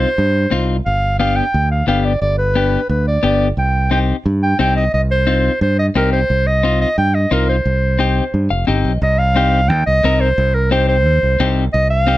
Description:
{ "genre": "latin, cumbia", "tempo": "176 BPM", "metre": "4/4", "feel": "straight", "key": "C harmonic minor, C minor from 9.0 s", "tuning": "A4 = 440 Hz", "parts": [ { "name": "clear clarinet", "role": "melody", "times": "0.0-12.2 s", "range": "Bb4 to G5", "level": "-17 LUFS", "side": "right 1 dB", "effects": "none" }, { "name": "clean electric guitar", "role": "accompaniment", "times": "0.0-12.2 s", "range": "B3 to F5", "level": "-18 LUFS", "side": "left 5 dB", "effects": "none" }, { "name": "modern bright fingered electric bass", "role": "bass", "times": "0.0-12.2 s", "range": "F1 to G2", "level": "-16 LUFS", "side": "right 1 dB", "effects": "none" } ], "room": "light reverb", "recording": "close, detailed microphones", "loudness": "-13 LUFS", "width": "side -16 dB against mid", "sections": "0.0-9.0 A section; 9.0-12.2 B section", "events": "clean electric guitar fill 8.3-9.0", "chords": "0.0 Cm; 0.9 G7; 3.6 Cm" }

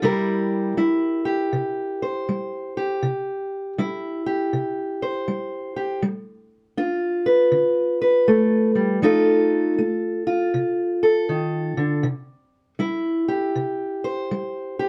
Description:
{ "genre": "blues", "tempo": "80 BPM", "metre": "4/4", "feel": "swing 64% on 8ths", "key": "C mixolydian", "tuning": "A4 = 440 Hz", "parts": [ { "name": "fingerpicked steel-string acoustic guitar", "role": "solo", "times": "0.0-14.9 s", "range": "C3 to C5", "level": "-22 LUFS", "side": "equal", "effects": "none" } ], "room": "moderate studio reverb, RT60 0.6 s", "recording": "dark, warm production", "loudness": "-22 LUFS", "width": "mono", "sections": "0.0-14.9 A section", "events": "none", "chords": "0.0 C7; 6.0 G7; 9.0 F7; 12.1 C" }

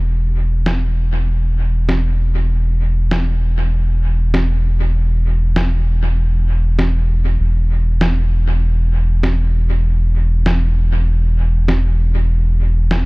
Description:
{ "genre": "ambient dub", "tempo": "98 BPM", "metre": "4/4", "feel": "swing 58% on 16ths", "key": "unclear", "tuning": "A4 = 440 Hz", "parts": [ { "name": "round analog bass", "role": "bass", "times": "0.0-13.1 s", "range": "E1", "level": "-14 LUFS", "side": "equal", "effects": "none" }, { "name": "electronic snare drum", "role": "drums", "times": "0.7-13.1 s", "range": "none", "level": "-24 LUFS", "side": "equal", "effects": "dub echo" } ], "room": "little or no reverb", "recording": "dark, warm production", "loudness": "-14 LUFS", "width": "side -25 dB against mid", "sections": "0.0-13.1 A section", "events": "none", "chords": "none" }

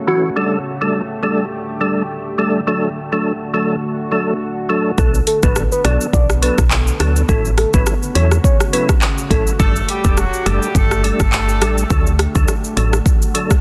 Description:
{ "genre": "dancehall", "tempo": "104 BPM", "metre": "4/4", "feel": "swing 56% on 16ths", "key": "unclear", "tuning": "A4 = 440 Hz", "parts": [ { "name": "deep dark ambient pad", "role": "sustained chords", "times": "0.0-13.6 s", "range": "C#3 to A4", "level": "-28 LUFS", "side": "equal", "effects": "chorus, built-in reverb, sidechain pumping" }, { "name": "soft octave-layered synth lead", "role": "melody", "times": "0.1-0.2, 5.0-9.4 s", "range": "F#4 to D5", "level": "-23 LUFS", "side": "equal", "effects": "chorus, delay" }, { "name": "percussive tonewheel organ", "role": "accompaniment", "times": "0.1-13.6 s", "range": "E3 to A4", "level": "-22 LUFS", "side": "equal", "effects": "chorus vibrato, fast rotary speaker" }, { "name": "woody FM bass", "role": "bass", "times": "5.0-13.0 s", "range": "E1 to E2", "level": "-19 LUFS", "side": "equal", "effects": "none" }, { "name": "afro-pop drum kit", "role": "drums", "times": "5.0-13.6 s", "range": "handclaps, hi-hat, kick drum, rim click, shaker", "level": "-18 LUFS", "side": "equal", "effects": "none" }, { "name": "dark horn section", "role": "second line", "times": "9.6-12.2 s", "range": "F#3 to A4", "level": "-25 LUFS", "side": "equal", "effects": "delay" } ], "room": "light reverb", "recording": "dense, heavily limited modern master", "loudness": "-16 LUFS", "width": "mono", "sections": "0.0-13.6 A section", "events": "none", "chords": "0.4 Gsus2; 2.7 D; 5.0 Bm7; 7.3 A6; 9.6 Gsus2; 11.9 D" }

